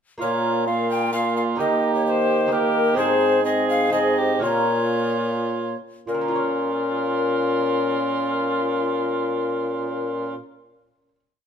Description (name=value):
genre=classical, renaissance-style consort dance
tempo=102-131 BPM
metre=3/4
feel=straight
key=Bb dorian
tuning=A4 = 440 Hz
part: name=mellow hollow alto recorder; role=melody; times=0.2-10.4 s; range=Bb4 to G5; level=-25 LUFS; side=left 6 dB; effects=none
part: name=clear cor anglais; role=second line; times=0.2-10.4 s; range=F4 to Ab4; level=-26 LUFS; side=right 8 dB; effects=none
part: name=lute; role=accompaniment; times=0.2-11.2 s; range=Ab2 to Db5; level=-28 LUFS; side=equal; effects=none
part: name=warm trombone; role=accompaniment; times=0.2-10.4 s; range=Bb3 to Db4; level=-28 LUFS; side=left 2 dB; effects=none
part: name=mellow bassoon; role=bass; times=0.2-10.4 s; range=Ab2 to Eb3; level=-26 LUFS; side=right 1 dB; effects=none
room=moderate large studio reverb, RT60 1.3 s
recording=minimal, uncompressed stereo recording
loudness=-20 LUFS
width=side -7 dB against mid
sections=0.2-6.1 A section; 6.1-9.6 final chord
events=slowing down 2.3-6.1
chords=0.2 Bbm; 1.6 Eb; 3.0 Ab; 4.4 Bbm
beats=| 0.21 0.68 1.14 | 1.59 2.05 2.51 | 2.97 3.44 3.93 | 4.43 4.96 5.50 | 6.08 6.67 7.25 | 7.84 8.43 9.01